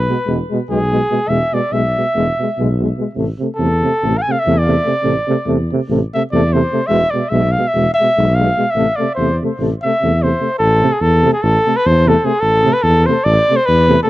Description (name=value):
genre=balkan folk, Balkan brass band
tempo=291 BPM (eighths)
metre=9/8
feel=straight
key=A harmonic minor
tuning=A4 = 441 Hz
part: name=warm flugelhorn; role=melody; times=0.0-14.1 s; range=G#4 to G#5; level=-16 LUFS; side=equal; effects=tape echo
part: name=mellow tuba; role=bass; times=0.0-14.0 s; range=E1 to E2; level=-16 LUFS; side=equal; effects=none
part: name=dark euphonium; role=accompaniment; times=0.1-14.1 s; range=B2 to C3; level=-20 LUFS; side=right 4 dB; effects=none
part: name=dark trombone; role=accompaniment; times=0.1-14.1 s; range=G#3 to A3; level=-21 LUFS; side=left 5 dB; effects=none
room=little or no reverb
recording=dry, close 1970s-style studio recording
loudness=-13 LUFS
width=side -16 dB against mid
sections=0.0-10.6 A section; 10.6-14.1 B section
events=speeding up 0.0-14.1; flugelhorn solo 0.0-10.6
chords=0.0 E; 3.2 Am; 6.9 E; 8.8 Am